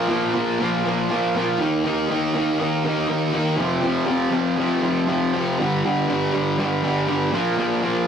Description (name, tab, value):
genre	rock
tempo	120 BPM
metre	4/4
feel	straight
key	unclear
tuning	A4 = 439 Hz
part	fuzz guitar	solo	0.0-8.1 s	F2 to Eb4	-19 LUFS	equal	distortion
room	wet studio ambience, RT60 0.5 s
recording	rough rehearsal-room recording, warm saturation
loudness	-19 LUFS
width	side -8 dB against mid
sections	0.0-8.1 A section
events	none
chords	0.0 Bb5; 1.6 Eb5; 3.6 F5; 5.6 G5; 7.3 Bb5